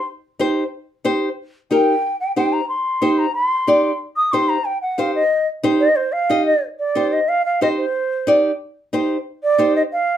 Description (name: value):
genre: latin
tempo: 183 BPM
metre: 4/4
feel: straight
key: C minor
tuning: A4 = 440 Hz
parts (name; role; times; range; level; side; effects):
- bansuri; melody; 0.0-10.2 s; C5 to Eb6; -18 LUFS; right 1 dB; none
- nylon-string guitar; accompaniment; 0.4-9.8 s; Eb4 to Eb5; -18 LUFS; equal; none
room: moderate studio ambience, RT60 0.5 s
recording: dark, warm production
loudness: -16 LUFS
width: side -10 dB against mid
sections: 0.0-6.6 A section; 6.6-10.2 B section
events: bansuri solo 0.0-6.6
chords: 0.0 Cm